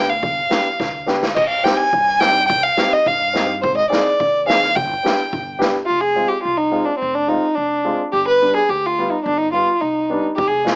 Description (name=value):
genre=klezmer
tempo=106 BPM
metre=2/4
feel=straight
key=G phrygian dominant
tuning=A4 = 439 Hz
part: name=dark violin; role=melody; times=0.0-10.8 s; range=C4 to Ab5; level=-16 LUFS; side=equal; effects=none
part: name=warm upright piano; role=accompaniment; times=0.0-10.8 s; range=G3 to Ab4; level=-22 LUFS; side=left 1 dB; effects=cassette tape, plate reverb
part: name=upright bass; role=bass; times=0.0-10.7 s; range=F1 to G2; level=-34 LUFS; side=equal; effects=none
part: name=street-band drum kit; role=drums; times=0.2-5.7, 10.4-10.8 s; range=crash cymbal, kick drum, snare drum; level=-22 LUFS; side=equal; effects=none
room=light reverb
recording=home recording on cassette, small speaker sound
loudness=-15 LUFS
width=side -34 dB against mid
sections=0.0-5.9 A section; 5.9-10.8 B section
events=drum fill 0.8-1.4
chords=0.0 G; 1.4 Cm; 3.6 Ab; 4.8 G; 5.9 Fm; 8.1 G